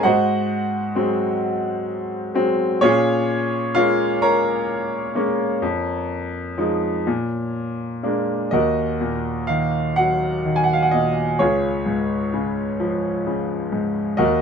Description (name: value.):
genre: classical, lyrical solo piano.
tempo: 43 BPM (dotted quarters).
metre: 6/8.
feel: rubato.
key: Bb minor, Eb minor from 8.5 s.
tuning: A4 = 441 Hz.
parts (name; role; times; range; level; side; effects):
bright grand piano; solo; 0.0-14.4 s; Db2 to Bb5; -19 LUFS; equal; none.
room: moderate small room ambience, RT60 0.5 s.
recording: minimal, uncompressed stereo recording.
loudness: -19 LUFS.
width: side -6 dB against mid.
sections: 0.0-8.5 A section; 8.5-14.4 B section.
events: none.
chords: 0.1 Ab7; 2.8 Bbm7; 5.6 Fm7; 7.1 Bb7; 8.5 Ebm; 11.4 Db.